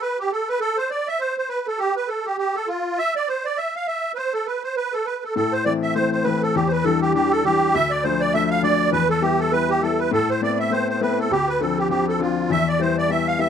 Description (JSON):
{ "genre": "celtic folk, Celtic reel", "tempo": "202 BPM", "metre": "4/4", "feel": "swing 58% on 8ths", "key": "A minor", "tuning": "A4 = 439 Hz", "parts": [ { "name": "musette accordion", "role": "melody", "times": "0.0-13.5 s", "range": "F4 to F5", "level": "-21 LUFS", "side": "right 3 dB", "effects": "none" }, { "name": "clear upright piano", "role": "accompaniment", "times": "5.4-13.5 s", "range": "D2 to E4", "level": "-22 LUFS", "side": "left 7 dB", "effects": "none" } ], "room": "light reverb", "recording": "close, detailed microphones", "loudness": "-19 LUFS", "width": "side -8 dB against mid", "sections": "0.0-5.4 A section; 5.4-13.5 A section", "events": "none", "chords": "0.0 N.C.; 5.4 Am; 6.5 Em7; 7.7 Dm; 8.9 Em; 10.1 Amadd9; 11.3 Dm7; 12.5 Em", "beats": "0.01 0.30 | 0.60 0.90 1.20 1.49 | 1.79 2.09 2.38 2.68 | 2.98 3.28 3.58 3.87 | 4.17 4.47 4.76 5.06 | 5.36 5.66 5.96 6.25 | 6.55 6.85 7.14 7.44 | 7.74 8.04 8.33 8.63 | 8.93 9.22 9.52 9.82 | 10.12 10.41 10.71 11.01 | 11.31 11.61 11.90 12.20 | 12.50 12.79 13.09 13.39" }